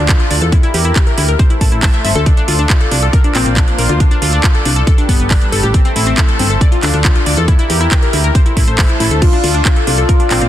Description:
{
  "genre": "uplifting trance",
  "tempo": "138 BPM",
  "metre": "4/4",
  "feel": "straight",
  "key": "D minor",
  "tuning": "A4 = 440 Hz",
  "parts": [
    { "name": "supersaw pad", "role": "sustained chords", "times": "0.0-10.5 s", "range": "G3 to E5", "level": "-20 LUFS", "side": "equal", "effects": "sidechain pumping, low-pass filter" },
    { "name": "analog pluck", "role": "arpeggios", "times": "0.0-10.5 s", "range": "B3 to A5", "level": "-19 LUFS", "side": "left 3 dB", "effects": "chorus, cassette tape, sidechain pumping, dub echo" },
    { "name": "solid FM bass", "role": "bass", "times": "0.0-10.5 s", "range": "G1 to E2", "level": "-15 LUFS", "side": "equal", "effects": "sidechain pumping" },
    { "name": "electronic kick drum", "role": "drums", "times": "0.1-10.2 s", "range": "none", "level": "-11 LUFS", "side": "equal", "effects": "none" },
    { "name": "house drum kit", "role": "drums", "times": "0.1-10.5 s", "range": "crash cymbal, handclaps, hi-hat", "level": "-18 LUFS", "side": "right 2 dB", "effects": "soft clipping on snare" },
    { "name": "warm velvety synth lead", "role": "second line", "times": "9.2-10.5 s", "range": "F4", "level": "-17 LUFS", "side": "left 3 dB", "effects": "chorus, ping-pong delay" }
  ],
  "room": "light reverb",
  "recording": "dense, heavily limited modern master",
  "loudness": "-10 LUFS",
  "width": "side -12 dB against mid",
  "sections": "0.0-10.5 A section",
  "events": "filter sweep on supersaw synth 0.0-10.5",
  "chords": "0.0 Dm; 0.5 Edim; 1.4 Am; 2.3 Dm; 3.1 Bbadd9; 4.0 Dm; 4.9 Gadd9; 5.7 Am; 6.6 Dm; 7.5 Edim; 8.3 Am; 9.2 Dm",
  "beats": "0.09 | 0.52 0.96 1.39 1.83 | 2.26 2.70 3.13 3.57 | 4.00 4.44 4.87 5.31 | 5.74 6.18 6.61 7.05 | 7.48 7.92 8.35 8.79 | 9.22 9.65 10.09"
}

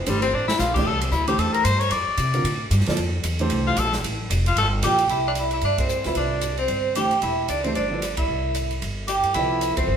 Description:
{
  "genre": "modal jazz",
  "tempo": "226 BPM",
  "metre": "4/4",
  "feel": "swing 59% on 8ths",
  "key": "F major, C major from 5.1 s",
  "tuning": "A4 = 439 Hz",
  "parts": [
    { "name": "breathy tenor saxophone", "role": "second line", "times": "0.0-10.0 s", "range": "E3 to D5", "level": "-24 LUFS", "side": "left 3 dB", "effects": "none" },
    { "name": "upright bass", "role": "bass", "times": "0.0-10.0 s", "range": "E1 to C3", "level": "-25 LUFS", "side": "equal", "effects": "none" },
    { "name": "warm grand piano", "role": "accompaniment", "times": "0.1-10.0 s", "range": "D3 to E5", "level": "-28 LUFS", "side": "right 2 dB", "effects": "none" },
    { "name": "swinging big-band drum kit", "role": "drums", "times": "0.1-9.8 s", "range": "crash cymbal, hi-hat, kick drum, ride cymbal, rim click, snare drum", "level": "-29 LUFS", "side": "right 1 dB", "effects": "none" },
    { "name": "vibraphone with medium hard mallets", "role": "melody", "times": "4.9-10.0 s", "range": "C5 to G5", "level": "-24 LUFS", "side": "right 4 dB", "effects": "none" }
  ],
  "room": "wet stone room reverb, RT60 1.2 s",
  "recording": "band playing live in one room",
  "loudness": "-20 LUFS",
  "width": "side -8 dB against mid",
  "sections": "0.0-5.1 A section; 5.1-10.0 B section",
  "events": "tenor saxophone solo 0.0-5.1; drum fill 0.3; band accent 5.8, 8.2, 9.8",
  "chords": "0.0 Fmaj9; 5.1 Cmaj9",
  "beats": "0.07 0.34 0.60 | 0.86 1.13 1.39 1.66 | 1.92 2.19 2.45 2.71 | 2.98 3.24 3.51 3.77 | 4.04 4.30 4.57 4.83 | 5.09 5.36 5.63 5.89 | 6.16 6.42 6.69 6.96 | 7.22 7.49 7.75 8.02 | 8.29 8.55 8.82 9.09 | 9.35 9.62 9.88"
}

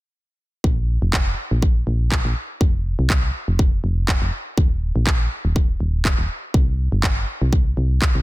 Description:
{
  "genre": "piano house",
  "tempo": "122 BPM",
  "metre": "4/4",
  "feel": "swing 55% on 16ths",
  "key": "unclear",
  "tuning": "A4 = 436 Hz",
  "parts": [
    { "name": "solid FM bass", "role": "bass", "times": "0.6-8.2 s", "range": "Eb1 to C2", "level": "-20 LUFS", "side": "equal", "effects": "sidechain pumping" },
    { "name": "electronic kick drum", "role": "drums", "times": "0.6-8.1 s", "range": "none", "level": "-18 LUFS", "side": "equal", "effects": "none" },
    { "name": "electronic handclaps", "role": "drums", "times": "1.1-8.1 s", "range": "none", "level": "-25 LUFS", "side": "right 1 dB", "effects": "none" }
  ],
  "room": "little or no reverb",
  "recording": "dense, heavily limited modern master",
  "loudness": "-18 LUFS",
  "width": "side -19 dB against mid",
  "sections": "0.6-8.2 A section",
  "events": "none",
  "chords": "none",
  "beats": "| 0.64 1.13 1.62 2.12 | 2.61 3.10 3.59 4.08 | 4.58 5.07 5.56 6.05 | 6.54 7.03 7.53 8.02"
}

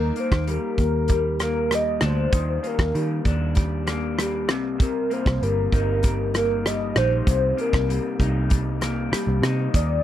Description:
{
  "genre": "indie pop, bedroom pop",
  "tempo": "97 BPM",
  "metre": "4/4",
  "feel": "straight",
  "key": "unclear",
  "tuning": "A4 = 440 Hz",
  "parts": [
    { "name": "warm velvety synth lead", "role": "melody", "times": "0.0-10.0 s", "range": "Bb4 to Eb5", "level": "-25 LUFS", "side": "equal", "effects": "analog chorus, slapback echo" },
    { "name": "electric guitar through a small old amp", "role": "accompaniment", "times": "0.0-10.0 s", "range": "C3 to Eb4", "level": "-27 LUFS", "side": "left 2 dB", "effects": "wide subtle chorus, warbly pitch drift" },
    { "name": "vintage muted picked electric bass", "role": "bass", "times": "0.0-10.0 s", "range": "G1 to Eb3", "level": "-24 LUFS", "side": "equal", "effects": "none" },
    { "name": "loose indie drum kit", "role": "drums", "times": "0.2-9.9 s", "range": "hi-hat, kick drum, rim click", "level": "-22 LUFS", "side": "equal", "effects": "none" }
  ],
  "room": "light reverb",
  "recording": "dry, close 1970s-style studio recording",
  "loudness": "-20 LUFS",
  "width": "side -12 dB against mid",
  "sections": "0.0-10.0 A section",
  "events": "none",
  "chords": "0.0 Ebmaj7; 4.5 Cm7",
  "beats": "0.48 1.09 1.71 | 2.33 2.95 3.56 4.18 | 4.80 5.42 6.03 6.65 | 7.27 7.89 8.51 9.12 | 9.74"
}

